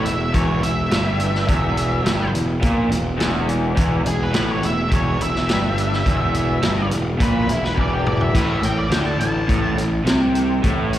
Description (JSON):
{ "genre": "blues rock power trio and southern rock", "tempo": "105 BPM", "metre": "4/4", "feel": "straight", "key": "unclear", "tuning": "A4 = 439 Hz", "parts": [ { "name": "octave-fuzz lead guitar", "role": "melody", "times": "0.0-9.8 s", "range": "E4 to A5", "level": "-25 LUFS", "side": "equal", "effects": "distortion, slapback echo" }, { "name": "raw garage guitar", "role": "riff", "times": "0.0-11.0 s", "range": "E2 to D3", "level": "-21 LUFS", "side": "equal", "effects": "overdrive, slapback echo" }, { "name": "fuzz picked electric bass", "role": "bass", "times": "0.0-11.0 s", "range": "E1 to D2", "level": "-22 LUFS", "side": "equal", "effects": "overdrive" }, { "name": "vintage drum kit", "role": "drums", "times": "0.1-11.0 s", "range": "crash cymbal, hi-hat, kick drum, snare drum, toms", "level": "-23 LUFS", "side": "equal", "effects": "none" } ], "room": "light reverb", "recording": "live gig heard through the venue's PA, recital hall reverb", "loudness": "-17 LUFS", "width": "side -12 dB against mid", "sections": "0.0-11.0 A section", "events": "drum fill 7.8-8.3", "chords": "0.0 Em; 8.3 Amadd11", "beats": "0.34 0.91 | 1.48 2.05 2.62 3.19 | 3.77 4.33 4.91 5.48 | 6.05 6.62 7.19 7.76 | 8.34 8.91 9.48 10.06 | 10.63" }